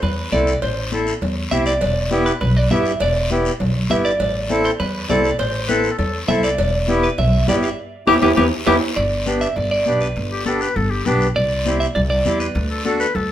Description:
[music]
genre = latin, cumbia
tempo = 201 BPM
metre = 4/4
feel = straight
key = G major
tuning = A4 = 439 Hz
[part]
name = clean electric guitar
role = melody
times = 0.0-12.8 s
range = G4 to E5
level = -22 LUFS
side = right 2 dB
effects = spring reverb
[part]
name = upright bass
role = bass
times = 0.0-13.3 s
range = E1 to E2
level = -22 LUFS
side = equal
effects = none
[part]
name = congas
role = percussion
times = 0.0-13.3 s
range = none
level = -25 LUFS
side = left 2 dB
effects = none
[part]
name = cowbell and timbales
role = percussion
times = 0.0-8.7 s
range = none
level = -26 LUFS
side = right 3 dB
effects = none
[part]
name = guiro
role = percussion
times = 0.0-13.3 s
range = none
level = -31 LUFS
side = left 3 dB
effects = none
[part]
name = accordion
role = accompaniment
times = 0.3-13.1 s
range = B3 to A4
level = -21 LUFS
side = equal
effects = none
[part]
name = clear clarinet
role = second line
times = 5.7-13.3 s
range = G4 to B4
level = -21 LUFS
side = left 4 dB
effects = none
[sound]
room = moderate studio reverb, RT60 0.6 s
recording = minimal, uncompressed stereo recording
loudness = -16 LUFS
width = side -11 dB against mid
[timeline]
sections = 0.0-9.0 A section; 9.0-13.3 B section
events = band accent 7.8-9.0; drum fill 8.4-9.0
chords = 0.0 Am; 1.8 Em; 4.2 Amadd9; 6.6 Em; 9.0 G; 11.4 C; 12.6 D

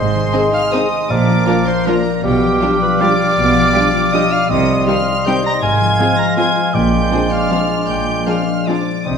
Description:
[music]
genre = classical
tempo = 158 BPM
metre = 3/4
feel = uneven beats, rubato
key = unclear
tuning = A4 = 440 Hz
[part]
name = rich symphonic violin section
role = melody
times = 0.0-9.2 s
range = G5 to Bb6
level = -23 LUFS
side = left 1 dB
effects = none
[part]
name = clear clarinet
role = second line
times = 0.0-9.2 s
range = G4 to Bb5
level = -21 LUFS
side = left 1 dB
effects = none
[part]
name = mellow concert flute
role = second line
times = 0.0-9.2 s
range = Bb5 to D6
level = -23 LUFS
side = right 1 dB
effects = none
[part]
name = warm oboe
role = second line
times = 0.0-9.2 s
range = C5 to F5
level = -24 LUFS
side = right 1 dB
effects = none
[part]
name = warm bassoon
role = accompaniment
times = 0.0-9.2 s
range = F3 to Ab3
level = -22 LUFS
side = right 2 dB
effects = none
[part]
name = concert harp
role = arpeggios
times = 0.0-9.2 s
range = Ab2 to Eb5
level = -20 LUFS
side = left 8 dB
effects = none
[part]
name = dark studio double bass section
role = bass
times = 0.0-9.2 s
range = Ab1 to C2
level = -23 LUFS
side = right 4 dB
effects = none
[part]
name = warm studio cello section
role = bass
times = 0.0-9.2 s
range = Ab2 to C3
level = -22 LUFS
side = right 4 dB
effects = none
[part]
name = warm symphonic violin section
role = second line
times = 0.3-8.8 s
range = D4 to C5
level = -27 LUFS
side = left 2 dB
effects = none
[part]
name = warm symphonic viola section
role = accompaniment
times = 0.3-8.8 s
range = F3 to Eb4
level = -24 LUFS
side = right 2 dB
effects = none
[part]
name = mellow French horn section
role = sustained chords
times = 0.3-8.8 s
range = Bb3 to Ab4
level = -26 LUFS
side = left 2 dB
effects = none
[part]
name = warm trombone section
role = sustained chords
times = 0.3-8.8 s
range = Eb3 to Bb3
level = -28 LUFS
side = right 4 dB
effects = none
[part]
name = timpani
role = percussion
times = 1.1-1.6, 6.7-7.3 s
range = Bb2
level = -28 LUFS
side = left 2 dB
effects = none
[sound]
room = moderate scoring stage reverb, RT60 1.5 s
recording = none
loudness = -12 LUFS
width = side -6 dB against mid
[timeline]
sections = 0.0-9.2 A section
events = none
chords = 0.0 Ab; 1.1 Bb; 2.2 G7/B; 4.5 Cm; 5.6 Fm/Ab; 6.7 Bb13

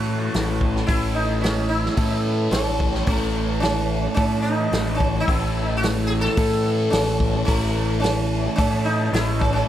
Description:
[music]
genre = psychedelic rock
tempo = 109 BPM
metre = 4/4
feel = straight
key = A major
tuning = A4 = 440 Hz
[part]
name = sitar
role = melody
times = 0.0-9.7 s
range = A3 to A4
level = -25 LUFS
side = equal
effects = analog delay
[part]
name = tonewheel organ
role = sustained chords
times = 0.0-9.7 s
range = E3 to A5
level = -35 LUFS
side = right 5 dB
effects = overdrive, stopped rotary speaker
[part]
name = fuzz guitar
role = riff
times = 0.0-9.7 s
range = A2 to A3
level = -26 LUFS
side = equal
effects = distortion, phaser
[part]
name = growling picked electric bass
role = bass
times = 0.0-9.6 s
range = A1 to A2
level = -24 LUFS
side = equal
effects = overdrive
[part]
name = vintage drum kit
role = drums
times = 0.3-9.5 s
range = hi-hat, kick drum, snare drum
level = -26 LUFS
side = equal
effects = analog delay
[sound]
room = moderate spring reverb, RT60 2.0 s, small room ambience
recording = echo-heavy mix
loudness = -19 LUFS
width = side -11 dB against mid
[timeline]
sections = 0.0-9.7 A section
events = none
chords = 0.0 A

